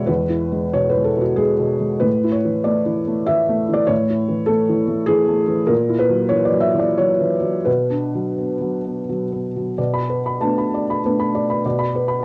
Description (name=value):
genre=neoclassical minimalist piano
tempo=84-101 BPM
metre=3/4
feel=rubato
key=B dorian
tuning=A4 = 445 Hz
part: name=felt-muted upright piano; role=solo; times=0.0-12.2 s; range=E2 to B5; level=-19 LUFS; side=equal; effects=cassette tape
room=moderate studio reverb, RT60 0.5 s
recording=home recording on cassette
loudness=-19 LUFS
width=mono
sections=0.0-9.8 A section; 9.8-12.2 B section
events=none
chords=0.0 E; 2.1 A; 5.7 F#7/A#; 7.7 Bm; 9.8 Bm7